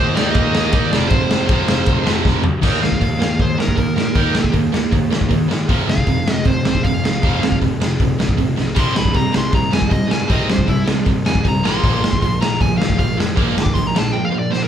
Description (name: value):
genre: punk rock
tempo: 157 BPM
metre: 4/4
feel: straight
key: unclear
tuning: A4 = 440 Hz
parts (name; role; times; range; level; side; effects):
- dark smooth lead guitar; melody; 0.0-14.7 s; E4 to D6; -23 LUFS; left 1 dB; overdrive
- overdriven electric guitar; riff; 0.0-14.7 s; F2 to Eb4; -21 LUFS; right 7 dB; none
- sludgy distorted guitar; riff; 0.0-14.7 s; F2 to Eb4; -23 LUFS; left 5 dB; overdrive
- fuzz picked electric bass; bass; 0.0-14.1 s; F1 to Bb2; -24 LUFS; equal; overdrive
- raw garage drum kit; drums; 0.2-14.6 s; crash cymbal, hi-hat, kick drum, ride cymbal, snare drum, toms; -17 LUFS; equal; none
room: light reverb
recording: band playing live in one room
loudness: -14 LUFS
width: side -9 dB against mid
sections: 0.0-2.6 A section; 2.6-14.7 B section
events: drum fill 2.2-2.6, 8.6, 14.5; lead electric guitar solo 2.6-14.7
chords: 0.0 Eb5; 0.9 F5; 2.6 Eb5; 5.7 F5; 8.8 C5; 11.6 Bb5